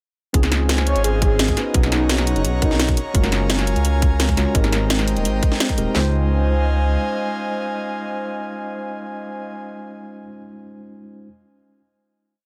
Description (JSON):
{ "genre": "liquid drum and bass", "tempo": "171 BPM", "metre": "4/4", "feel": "straight", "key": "Db major", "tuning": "A4 = 440 Hz", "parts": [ { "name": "mellow tine electric piano", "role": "accompaniment", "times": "0.3-11.3 s", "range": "Ab3 to Db5", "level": "-29 LUFS", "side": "equal", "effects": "delay" }, { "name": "airy breathy pad", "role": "sustained chords", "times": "0.3-9.5 s", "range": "C5 to Bb5", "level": "-30 LUFS", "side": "equal", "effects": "chorus" }, { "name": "dark detuned saw bass", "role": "bass", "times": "0.3-7.0 s", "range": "Eb1 to Db2", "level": "-22 LUFS", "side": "equal", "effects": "tube saturation" }, { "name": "drum and bass drum kit", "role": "drums", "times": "0.3-6.0 s", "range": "handclaps, kick drum, snare drum", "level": "-21 LUFS", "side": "equal", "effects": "overdrive" }, { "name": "drum and bass drum kit", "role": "drums", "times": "0.3-5.8 s", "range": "hi-hat, snare drum", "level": "-24 LUFS", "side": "equal", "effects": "overdrive" }, { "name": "breathy flute-like synth lead", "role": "melody", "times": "0.9-2.9 s", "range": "Eb4 to Db5", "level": "-27 LUFS", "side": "equal", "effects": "chorus, dub echo" } ], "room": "light reverb", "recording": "none", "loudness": "-20 LUFS", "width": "mono", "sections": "0.3-6.0 drop; 6.0-8.8 final chord", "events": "drop 0.3-6.0", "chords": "0.3 Dbmaj9; 1.6 Cbmaj9; 3.0 Gbmaj9; 4.6 Abmaj9; 6.0 Dbmaj9", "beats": "| 0.34 0.69 1.04 1.39 | 1.74 2.10 2.45 2.80 | 3.15 3.50 3.85 4.20 | 4.55 4.90 5.25 5.60 | 5.96 6.31 6.66 7.01 | 7.36 7.71 8.06 8.41" }